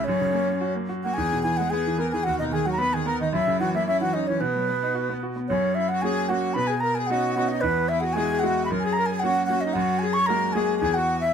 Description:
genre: celtic folk, Celtic reel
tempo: 223 BPM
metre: 4/4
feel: swing 53% on 8ths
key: unclear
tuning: A4 = 441 Hz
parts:
  - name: wooden flute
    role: melody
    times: 0.0-11.3 s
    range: B4 to C#6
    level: -25 LUFS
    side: equal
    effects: none
  - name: accordion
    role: second line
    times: 0.0-11.3 s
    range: B3 to C#5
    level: -29 LUFS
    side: left 5 dB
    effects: none
  - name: bright concert grand piano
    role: accompaniment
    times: 0.0-11.3 s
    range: D#2 to F#4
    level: -26 LUFS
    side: right 1 dB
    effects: none
room: light reverb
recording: band playing live in one room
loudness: -22 LUFS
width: side -7 dB against mid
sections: 0.0-5.5 A section; 5.5-11.3 B section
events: none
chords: 0.1 F#; 1.1 E; 2.2 B/D#; 3.3 F#7(no3); 4.4 B5; 5.5 F#; 6.6 Badd9; 7.6 Eadd9; 8.7 F#; 9.8 F#add9; 10.8 E

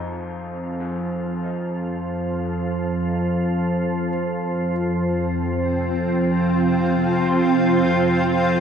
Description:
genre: dark ambient drone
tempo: free time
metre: none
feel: none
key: F minor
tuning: A4 = 440 Hz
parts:
  - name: bright grand piano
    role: arpeggios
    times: 0.0-8.6 s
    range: Ab2 to Eb4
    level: -39 LUFS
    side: left 5 dB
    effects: analog delay
  - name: organ-like drone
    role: drone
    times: 0.0-8.6 s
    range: F2 to F3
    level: -21 LUFS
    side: equal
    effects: ensemble chorus, built-in reverb
  - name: granular cloud pad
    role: sustained chords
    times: 5.3-8.6 s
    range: C4 to F4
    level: -20 LUFS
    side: right 1 dB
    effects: built-in reverb
room: wet plate reverb, RT60 2.4 s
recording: dreamy mix soaked in reverb, nothing above 10.4 kHz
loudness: -19 LUFS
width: side -7 dB against mid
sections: 0.0-8.6 A section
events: none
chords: 0.0 F5

